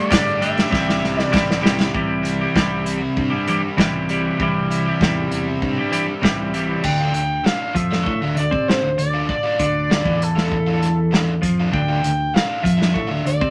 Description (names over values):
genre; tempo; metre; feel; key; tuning
indie rock; 98 BPM; 4/4; straight; D minor; A4 = 444 Hz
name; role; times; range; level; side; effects
overdriven synth lead; melody; 0.0-1.6, 6.8-13.5 s; A4 to G5; -26 LUFS; equal; none
crunchy overdriven guitar; riff; 0.0-13.3 s; C3 to G4; -30 LUFS; equal; none
twelve-string electric guitar; riff; 0.0-13.5 s; C3 to G4; -23 LUFS; equal; none
modern bright fingered electric bass; bass; 0.1-13.5 s; G1 to C3; -30 LUFS; equal; none
unplugged drum kit; drums; 0.1-13.5 s; crash cymbal, hi-hat, kick drum, snare drum; -24 LUFS; equal; none
group handclap; percussion; 0.1-1.5 s; none; -32 LUFS; equal; none
room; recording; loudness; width
wet studio reverb, RT60 0.6 s; none; -19 LUFS; mono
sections
0.0-1.9 A section; 1.9-6.8 B section; 6.8-13.5 C section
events
drum fill 0.7-1.9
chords
0.0 Gsus2; 0.7 C; 6.8 Dm